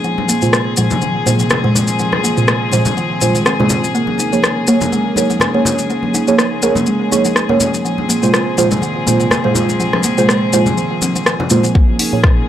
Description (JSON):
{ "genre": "afro house", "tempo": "123 BPM", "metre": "4/4", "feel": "swing 55% on 16ths", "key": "Bb minor", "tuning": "A4 = 440 Hz", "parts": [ { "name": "warm chamber string section", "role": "sustained chords", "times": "0.0-12.5 s", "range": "Bb2 to Ab4", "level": "-21 LUFS", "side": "left 4 dB", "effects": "sidechain pumping" }, { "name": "kalimba", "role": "arpeggios", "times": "0.0-12.2 s", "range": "C3 to Eb4", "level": "-19 LUFS", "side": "right 1 dB", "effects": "sidechain pumping, low-pass filter, analog delay" }, { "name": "deep mellow chord stab", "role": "stabs", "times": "0.0-12.5 s", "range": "Bb2 to Db5", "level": "-17 LUFS", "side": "right 2 dB", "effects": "chorus, sidechain pumping, analog delay" }, { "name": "maracas", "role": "percussion", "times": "0.0-11.7 s", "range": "none", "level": "-21 LUFS", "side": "left 3 dB", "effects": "none" }, { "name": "congas", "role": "percussion", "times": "0.2-11.7 s", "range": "none", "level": "-23 LUFS", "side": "left 2 dB", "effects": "none" }, { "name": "deep house drum kit", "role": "drums", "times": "0.5-12.3 s", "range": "hi-hat, rim click", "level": "-16 LUFS", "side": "left 1 dB", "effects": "high-pass filter on snare, low-pass filter on snare, high-pass filter on hats, low-pass filter on hats, high-pass filter on toms, low-pass filter on toms, high-pass filter on room, low-pass filter on room" }, { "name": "round analog bass", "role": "bass", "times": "11.8-12.4 s", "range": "Bb1 to Bb2", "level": "-21 LUFS", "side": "equal", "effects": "sidechain pumping" }, { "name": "electronic kick drum", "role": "drums", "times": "11.8-12.3 s", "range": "none", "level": "-11 LUFS", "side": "equal", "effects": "none" }, { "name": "riser", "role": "sound effects", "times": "12.4-12.5 s", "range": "none", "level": "-45 LUFS", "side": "equal", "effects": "none" } ], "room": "light reverb, small room ambience", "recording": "dry, gritty hardware recording", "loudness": "-12 LUFS", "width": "side -11 dB against mid", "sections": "0.0-11.8 A section", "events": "filter sweep on synth stab 0.0-11.8", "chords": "0.0 Fm/Bb; 3.9 Bbm7; 7.8 Fm/Bb; 11.8 Bbm7", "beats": "| 0.04 0.53 1.02 1.51 | 2.00 2.48 2.97 3.46 | 3.95 4.43 4.92 5.41 | 5.90 6.39 6.88 7.36 | 7.85 8.34 8.83 9.31 | 9.80 10.29 10.78 11.27 | 11.75 12.24" }